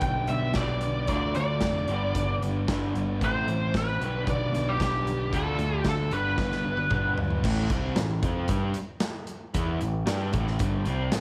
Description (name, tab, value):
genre	classic rock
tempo	113 BPM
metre	4/4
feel	straight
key	A minor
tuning	A4 = 438 Hz
part	biting lead guitar	melody	0.0-7.1 s	G4 to G5	-32 LUFS	equal	overdrive
part	overdriven semi-hollow guitar	riff	0.0-11.2 s	G2 to G4	-37 LUFS	equal	tremolo
part	sludgy distorted guitar	riff	0.0-11.2 s	G2 to C5	-35 LUFS	equal	overdrive
part	growling picked electric bass	bass	0.0-11.2 s	F1 to G2	-32 LUFS	equal	overdrive
part	big rock drum kit	drums	0.0-11.2 s	crash cymbal, hi-hat, kick drum, snare drum, toms	-34 LUFS	equal	none
room	light reverb, small room ambience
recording	none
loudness	-27 LUFS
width	mono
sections	0.0-7.4 A section; 7.4-11.2 B section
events	drum fill 6.4-7.4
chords	0.0 G/B; 1.1 Dm; 1.9 G; 3.2 Am; 4.0 G/B; 5.3 Dm; 6.1 G; 7.4 Am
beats	0.04 0.57 | 1.10 1.63 2.16 2.69 | 3.21 3.74 4.27 4.80 | 5.33 5.86 6.39 6.92 | 7.45 7.98 8.51 9.04 | 9.56 10.09 10.62 11.15